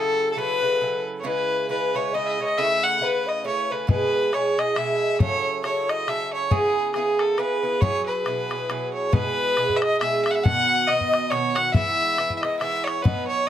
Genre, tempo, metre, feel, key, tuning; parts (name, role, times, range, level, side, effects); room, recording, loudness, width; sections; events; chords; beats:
celtic folk, Celtic waltz; 137 BPM; 3/4; swing 58% on 8ths; E major; A4 = 440 Hz
warm fiddle; melody; 0.0-13.5 s; G#4 to F#5; -24 LUFS; equal; plate reverb
mellow wooden-headed alto flute; second line; 0.0-13.5 s; G#4 to F#5; -28 LUFS; left 6 dB
Irish bouzouki; accompaniment; 0.0-13.5 s; G#2 to B4; -26 LUFS; right 4 dB
bodhran; percussion; 3.9-13.2 s; -23 LUFS; left 2 dB
moderate studio reverb, RT60 0.6 s; close, detailed microphones; -20 LUFS; side -10 dB against mid
0.0-9.1 A section; 9.1-13.5 B section
0.0 F#m7; 1.2 C#m7; 2.6 Aadd9; 3.9 E; 5.2 F#m7; 6.5 C#m7; 7.8 Eadd9; 9.1 E; 10.4 B; 11.7 E
0.37 0.81 | 1.25 1.69 2.13 | 2.57 3.01 3.44 | 3.88 4.32 4.76 | 5.20 5.64 6.07 | 6.51 6.95 7.39 | 7.82 8.26 8.70 | 9.13 9.57 10.01 | 10.44 10.88 11.31 | 11.75 12.18 12.62 | 13.05 13.49